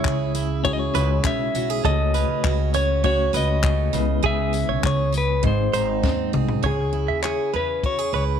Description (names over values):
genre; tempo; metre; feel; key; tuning
acoustic pop; 100 BPM; 4/4; straight; C# minor; A4 = 440 Hz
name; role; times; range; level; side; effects
clean lap steel guitar; melody; 0.0-8.2 s; G#4 to E5; -25 LUFS; left 4 dB; none
barky reed electric piano; accompaniment; 0.0-6.7 s; G#3 to C#5; -30 LUFS; left 16 dB; overdrive, fast tremolo
picked steel-string acoustic guitar; accompaniment; 0.0-8.4 s; G#2 to G#4; -27 LUFS; right 13 dB; none
direct-recorded clean electric guitar; arpeggios; 0.0-8.4 s; G#4 to E5; -28 LUFS; right 13 dB; spring reverb
upright bass; bass; 0.0-8.4 s; G#1 to E2; -24 LUFS; equal; none
compact cocktail drum kit; drums; 0.0-8.0 s; handclaps, kick drum, snare drum, tambourine, toms; -26 LUFS; left 3 dB; none
room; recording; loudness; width
studio reverb; 1960s-style stereo with parts hard left and right; -19 LUFS; side -8 dB against mid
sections
0.0-6.6 A section; 6.6-8.4 B section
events
drum fill 6.0-6.6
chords
0.0 E; 1.8 F#m/C#; 3.9 E/C#; 5.4 G#; 6.6 C#m